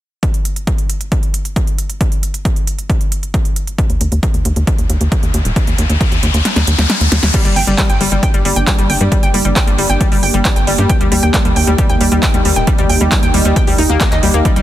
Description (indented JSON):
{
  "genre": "uplifting trance",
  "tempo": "135 BPM",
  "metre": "4/4",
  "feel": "straight",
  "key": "G minor",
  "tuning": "A4 = 440 Hz",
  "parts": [
    { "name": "big-room dance drum kit", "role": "drums", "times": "0.2-14.6 s", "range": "crash cymbal, handclaps, hi-hat, snare drum", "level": "-19 LUFS", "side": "right 1 dB", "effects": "overdrive" },
    { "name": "electronic kick drum", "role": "drums", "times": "0.2-14.5 s", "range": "none", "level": "-15 LUFS", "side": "equal", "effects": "overdrive" },
    { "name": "riser", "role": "sound effects", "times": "4.9-7.3 s", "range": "none", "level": "-21 LUFS", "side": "left 3 dB", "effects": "none" },
    { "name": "tight sequencer bass", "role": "bass", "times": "3.9-14.6 s", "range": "Eb1 to G2", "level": "-15 LUFS", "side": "equal", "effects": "sidechain pumping" },
    { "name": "lush unison pad", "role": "sustained chords", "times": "8.2-14.6 s", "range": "Bb3 to G5", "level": "-20 LUFS", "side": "right 1 dB", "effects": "chorus, sidechain pumping" },
    { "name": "analog pluck", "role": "arpeggios", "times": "7.3-14.6 s", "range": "G3 to G5", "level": "-17 LUFS", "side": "left 1 dB", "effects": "chorus, sidechain pumping, tape echo" }
  ],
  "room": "digital ambience",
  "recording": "dense, heavily limited modern master",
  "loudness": "-11 LUFS",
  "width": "side -13 dB against mid",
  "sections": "0.2-7.3 A section; 7.3-14.6 B section",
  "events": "riser 4.9-7.3; kick drops out 6.5-7.3; drum fill 6.5-7.3",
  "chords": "0.2 N.C.; 7.3 Gm; 10.9 Eb",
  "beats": "| 0.23 0.67 1.12 1.56 | 2.01 2.45 2.90 3.34 | 3.79 4.23 4.67 5.12 | 5.56 6.01 6.45 6.90 | 7.34 7.79 8.23 8.67 | 9.12 9.56 10.01 10.45 | 10.90 11.34 11.79 12.23 | 12.67 13.12 13.56 14.01 | 14.45"
}